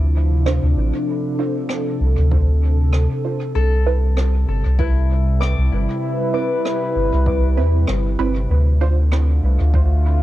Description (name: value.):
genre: ambient dub.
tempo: 97 BPM.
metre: 4/4.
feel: swing 56% on 16ths.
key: D dorian.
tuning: A4 = 441 Hz.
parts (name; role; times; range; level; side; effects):
warbly tape-like pad; sustained chords; 0.0-10.2 s; C3 to B4; -23 LUFS; left 1 dB; chorus, built-in reverb, cassette tape.
concert harp; arpeggios; 0.0-8.5 s; E4 to D6; -31 LUFS; left 8 dB; cassette tape, dub echo.
soft dub sub bass; bass; 0.0-10.2 s; G1 to E2; -16 LUFS; equal; none.
filtered dub chord stab; stabs; 0.5-8.9 s; C4 to C5; -28 LUFS; right 8 dB; phaser, cassette tape, dub echo.
rim click; drums; 0.5-9.3 s; none; -30 LUFS; equal; cassette tape, dub echo.
electronic kick drum; drums; 2.3-9.9 s; none; -23 LUFS; equal; overdrive, cassette tape.
room: little or no reverb.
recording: home recording on cassette.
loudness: -16 LUFS.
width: side -15 dB against mid.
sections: 0.0-10.2 A section.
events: none.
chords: 0.0 Dm7; 3.6 Cmaj7; 8.5 Dm7.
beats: 0.46 | 1.08 1.70 2.31 2.93 | 3.55 4.17 4.79 5.41 | 6.03 6.64 7.26 7.88 | 8.50 9.12 9.74.